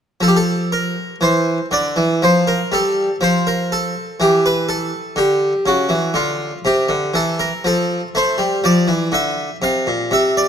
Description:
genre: classical, baroque-style suite movement for harpsichord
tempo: 61 BPM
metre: 4/4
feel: rubato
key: D minor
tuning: A4 = 440 Hz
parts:
  - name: harpsichord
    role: solo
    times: 0.2-10.5 s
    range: Bb2 to F5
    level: -15 LUFS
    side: equal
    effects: none
room: moderate concert hall reverb, RT60 2.3 s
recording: close, detailed microphones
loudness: -15 LUFS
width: side -8 dB against mid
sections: 0.2-10.5 A section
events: none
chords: 0.2 Dm; 4.2 Gmaj13; 6.2 Dm; 8.1 F5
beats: | 0.20 1.22 2.22 3.22 | 4.21 5.18 6.16 7.16 | 8.14 9.13 10.12

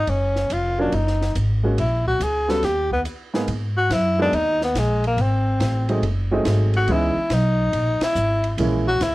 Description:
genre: jazz, small-group swing and bop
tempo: 141 BPM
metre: 4/4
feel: swing 67% on 8ths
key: Eb minor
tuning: A4 = 442 Hz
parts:
  - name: breathy tenor saxophone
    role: melody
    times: 0.0-9.1 s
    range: G#3 to A4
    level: -21 LUFS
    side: left 1 dB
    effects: none
  - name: upright bass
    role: bass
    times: 0.0-9.1 s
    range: F1 to G#2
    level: -22 LUFS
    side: equal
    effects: none
  - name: compact cocktail drum kit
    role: drums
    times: 0.1-9.1 s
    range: hi-hat, kick drum, ride cymbal, snare drum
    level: -32 LUFS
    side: equal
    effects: none
  - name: warm upright piano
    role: accompaniment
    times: 0.8-8.8 s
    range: Ab2 to Ab4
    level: -23 LUFS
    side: right 2 dB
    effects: none
room: light reverb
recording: worn, warbling old tape, cassette tape, warbly pitch drift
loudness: -18 LUFS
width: side -18 dB against mid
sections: 0.0-3.5 A section; 3.5-9.1 B section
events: break 3.1-3.5; band accent 7.9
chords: 0.1 Ebm7; 1.8 A13b9/Bb (rootless); 2.6 Eb5; 3.5 G#7sus2; 5.2 G#7b9; 6.9 C#m9; 8.6 A#m7b5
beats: | 0.07 0.50 0.93 1.35 | 1.78 2.20 2.63 3.06 | 3.48 3.91 4.33 4.76 | 5.18 5.61 6.03 6.46 | 6.88 7.31 7.73 8.16 | 8.58 9.01

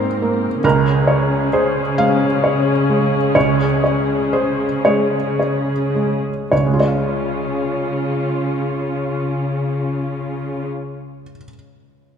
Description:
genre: cinematic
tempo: 35-49 BPM (dotted quarters)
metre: 6/8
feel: rubato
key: Db major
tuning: A4 = 440 Hz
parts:
  - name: felt-muted upright piano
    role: accompaniment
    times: 0.0-12.2 s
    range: Db2 to F5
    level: -18 LUFS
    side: right 2 dB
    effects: none
  - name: muted studio viola section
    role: accompaniment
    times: 0.0-10.7 s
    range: C4 to Bb4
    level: -22 LUFS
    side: left 4 dB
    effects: none
  - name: muted studio cello section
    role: bass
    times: 0.0-10.7 s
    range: Ab2 to Db3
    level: -22 LUFS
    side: equal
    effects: none
room: moderate scoring stage reverb, RT60 2.0 s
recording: none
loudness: -16 LUFS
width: side -7 dB against mid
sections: 0.0-6.5 A section; 6.5-9.9 B section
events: slowing down 0.0-6.5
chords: 0.0 Abadd9; 0.6 Db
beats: | 0.64 1.98 | 3.35 4.84 | 6.51 8.20

